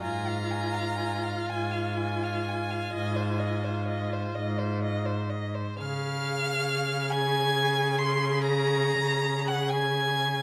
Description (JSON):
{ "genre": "classical, slow romantic movement for string quartet", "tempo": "40-48 BPM (dotted quarters)", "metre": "12/8", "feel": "rubato", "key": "Db major", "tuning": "A4 = 440 Hz", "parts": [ { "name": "rich violin", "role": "melody", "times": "0.0-10.4 s", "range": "Ab5 to C7", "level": "-36 LUFS", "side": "equal", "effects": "none" }, { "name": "rich violin", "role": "second line", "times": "0.0-10.4 s", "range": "C5 to C6", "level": "-35 LUFS", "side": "equal", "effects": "none" }, { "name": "rich viola", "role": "accompaniment", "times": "0.0-10.4 s", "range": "F4 to Ab4", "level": "-34 LUFS", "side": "equal", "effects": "none" }, { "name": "clear cello", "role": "bass", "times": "0.0-10.4 s", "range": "Ab2 to Db3", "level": "-32 LUFS", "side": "equal", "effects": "none" } ], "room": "light reverb", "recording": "none", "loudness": "-28 LUFS", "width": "mono", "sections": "0.0-5.8 A section; 5.8-10.4 B section", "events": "none", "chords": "0.0 Fmadd11/Ab; 5.8 Db" }